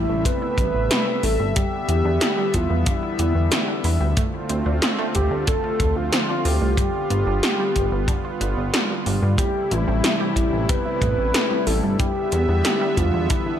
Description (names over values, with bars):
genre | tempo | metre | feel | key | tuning
synthwave | 92 BPM | 4/4 | straight | A minor | A4 = 442 Hz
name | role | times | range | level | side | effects
soft octave-layered synth lead | melody | 0.0-13.6 s | E4 to B4 | -25 LUFS | equal | chorus, ping-pong delay
warm analog pad | sustained chords | 0.0-13.6 s | C3 to E5 | -27 LUFS | left 1 dB | chorus, sidechain pumping
chorused synth bass | bass | 0.0-13.3 s | G1 to G2 | -22 LUFS | equal | none
analog pluck | arpeggios | 0.1-13.6 s | G3 to B4 | -31 LUFS | right 4 dB | chorus, ping-pong delay
80s electronic pad drums | drums | 0.3-13.4 s | hi-hat, snare drum | -24 LUFS | equal | gated reverb
kick drum | drums | 0.3-13.4 s | none | -24 LUFS | equal | none
mellow tine electric piano | stabs | 9.4-13.6 s | G3 to G4 | -30 LUFS | left 5 dB | none
room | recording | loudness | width
light reverb | lossy compression artefacts | -19 LUFS | side -10 dB against mid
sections
0.0-13.6 A section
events
none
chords
0.0 Am7; 1.6 Em7; 4.2 Dm7; 6.8 G7; 9.4 Am7; 12.0 Em7